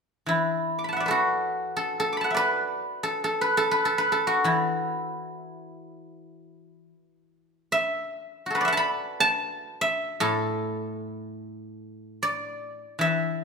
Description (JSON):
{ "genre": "chinese traditional, Chinese solo plucked strings", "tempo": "free time", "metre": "none", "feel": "none", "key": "A zhi mode", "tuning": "A4 = 439 Hz", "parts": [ { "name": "guzheng", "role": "solo", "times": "0.3-13.4 s", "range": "A2 to D6", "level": "-24 LUFS", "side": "equal", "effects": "none" } ], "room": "moderate recital hall reverb, RT60 1.6 s", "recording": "minimal, uncompressed stereo recording", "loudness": "-23 LUFS", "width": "side -4 dB against mid", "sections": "0.0-13.0 A section", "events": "none", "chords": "none" }